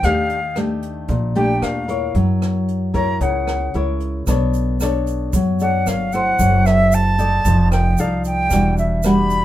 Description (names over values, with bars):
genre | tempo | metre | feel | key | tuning
bossa nova | 113 BPM | 4/4 | straight | unclear | A4 = 443 Hz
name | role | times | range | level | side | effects
silver concert flute | melody | 0.0-9.4 s | E5 to B5 | -20 LUFS | equal | none
nylon-string guitar | accompaniment | 0.0-9.4 s | Bb2 to D5 | -20 LUFS | left 2 dB | none
upright bass | bass | 0.0-9.4 s | E1 to F#2 | -20 LUFS | right 1 dB | none
jazz brush drum kit | drums | 0.0-9.4 s | hi-hat, kick drum, rim click | -26 LUFS | right 1 dB | none
egg shaker | percussion | 4.3-9.4 s | none | -34 LUFS | right 7 dB | none
room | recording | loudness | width
moderate studio reverb, RT60 0.5 s | minimal, uncompressed stereo recording | -16 LUFS | side -13 dB against mid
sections
0.0-9.4 A section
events
flute solo 0.0-9.4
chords
0.0 Ebmaj9#11; 2.2 F#7; 4.3 Bm9; 6.4 F#m7b5; 7.5 F6; 8.5 Em9